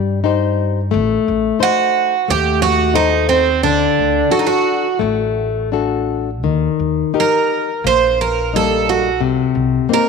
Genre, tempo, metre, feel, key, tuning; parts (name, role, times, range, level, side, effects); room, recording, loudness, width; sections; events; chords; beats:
fado-style ballad; 88 BPM; 4/4; rubato; A4 = 438 Hz
flamenco guitar; accompaniment; 0.0-10.1 s; C3 to C5; -18 LUFS; left 10 dB
upright bass; bass; 0.0-9.8 s; A1 to G2; -22 LUFS; equal
picked twelve-string acoustic guitar; melody; 1.6-10.1 s; C4 to C5; -15 LUFS; right 7 dB
moderate echo chamber reverb, RT60 2.0 s; 1960s-style stereo with parts hard left and right; -14 LUFS; side -5 dB against mid
0.0-10.1 A section
0.0 Cm/G; 0.9 Adim; 3.6 D; 6.4 Eb; 9.2 Cm7
0.26 | 0.94 1.62 2.29 2.96 | 3.63 4.31 5.00 5.72 | 6.43 7.13 7.83 8.52 | 9.21 9.89